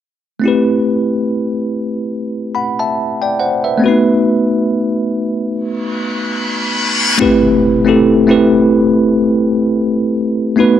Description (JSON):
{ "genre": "R&B", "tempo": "71 BPM", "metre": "4/4", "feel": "swing 58% on 16ths", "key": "A dorian", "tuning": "A4 = 440 Hz", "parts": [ { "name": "bell-like tine electric piano", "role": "accompaniment", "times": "0.4-10.8 s", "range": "A3 to B5", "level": "-12 LUFS", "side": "equal", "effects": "medium stereo tremolo" }, { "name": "reverse cymbal and impact", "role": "sound effects", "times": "5.9-10.6 s", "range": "none", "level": "-19 LUFS", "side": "left 1 dB", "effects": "none" } ], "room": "moderate recital hall reverb, RT60 1.5 s", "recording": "dark, warm production", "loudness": "-12 LUFS", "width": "side -10 dB against mid", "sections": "0.4-7.2 A section; 7.2-10.8 B section", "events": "reverse cymbal 5.9-7.2; impact 7.2-10.6", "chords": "0.4 Am9; 3.8 B7; 7.2 Am9", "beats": "| 0.44 1.28 2.13 2.97 | 3.82 4.66 5.51 6.35 | 7.20 8.04 8.89 9.73 | 10.58" }